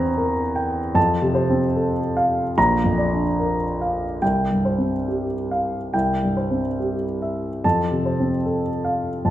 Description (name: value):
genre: classical, romantic character piece for solo piano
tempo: 68-77 BPM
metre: 4/4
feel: rubato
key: F major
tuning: A4 = 440 Hz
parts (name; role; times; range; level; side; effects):
- warm concert grand piano; solo; 0.0-9.3 s; Bb1 to Bb5; -19 LUFS; equal; none
room: moderate recital hall reverb, RT60 1.5 s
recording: none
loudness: -19 LUFS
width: side -13 dB against mid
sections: 0.0-9.3 A section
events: none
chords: 0.0 C7/E; 1.0 F; 2.6 Bb; 4.2 Csus4; 5.9 C; 7.6 F